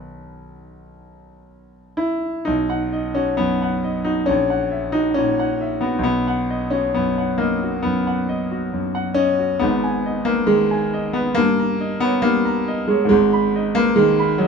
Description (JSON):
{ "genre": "classical, romantic character piece for solo piano", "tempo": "68 BPM", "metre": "4/4", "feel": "uneven beats, rubato", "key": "B major", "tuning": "A4 = 440 Hz", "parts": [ { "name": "clear grand piano", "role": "solo", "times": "0.0-14.5 s", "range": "G#1 to B5", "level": "-17 LUFS", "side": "equal", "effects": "none" } ], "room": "light reverb", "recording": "minimal, uncompressed stereo recording", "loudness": "-17 LUFS", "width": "side -6 dB against mid", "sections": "0.0-2.5 A section; 2.5-14.5 B section", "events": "none", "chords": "0.0 B; 4.3 F#7/A#; 6.0 B; 9.6 G#m; 11.4 D#7/G; 13.1 G#m" }